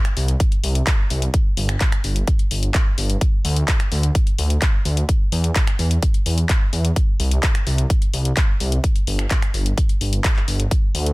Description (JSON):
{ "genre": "EDM, festival progressive house", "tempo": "128 BPM", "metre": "4/4", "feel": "straight", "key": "unclear", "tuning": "A4 = 440 Hz", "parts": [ { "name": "house drum kit", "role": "drums", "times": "0.0-11.1 s", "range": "finger snaps, handclaps, hi-hat", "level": "-25 LUFS", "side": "left 2 dB", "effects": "none" }, { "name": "detuned saw bass", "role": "bass", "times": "0.2-11.1 s", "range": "G1 to E2", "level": "-19 LUFS", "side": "equal", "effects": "sidechain pumping" }, { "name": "electronic kick drum", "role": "drums", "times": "0.4-10.8 s", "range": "none", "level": "-18 LUFS", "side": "equal", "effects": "none" } ], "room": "little or no reverb", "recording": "dense, heavily limited modern master", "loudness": "-17 LUFS", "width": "side -22 dB against mid", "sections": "0.0-11.1 A section", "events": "none", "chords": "none" }